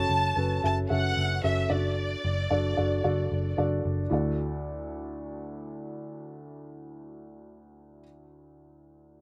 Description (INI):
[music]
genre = piano-driven pop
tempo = 112 BPM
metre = 4/4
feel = straight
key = D major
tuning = A4 = 440 Hz
[part]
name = warm studio violin section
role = melody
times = 0.0-3.6 s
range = D5 to A5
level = -33 LUFS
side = equal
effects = slapback echo
[part]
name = felt-muted upright piano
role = accompaniment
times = 0.0-9.2 s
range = D2 to E5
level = -34 LUFS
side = equal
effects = slapback echo
[part]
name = vintage muted picked electric bass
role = bass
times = 0.0-8.0 s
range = F#1 to D2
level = -31 LUFS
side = equal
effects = none
[sound]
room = little or no reverb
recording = recorded outdoors, with no room sound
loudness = -28 LUFS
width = mono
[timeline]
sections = 0.0-4.1 A section; 4.1-8.4 B section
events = none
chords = 0.0 F#m; 1.7 D/F#; 4.1 Dadd9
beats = 0.36 0.90 1.43 | 1.97 2.50 3.04 3.58 | 4.11 4.65 5.18 5.72 | 6.26 6.79 7.33 7.87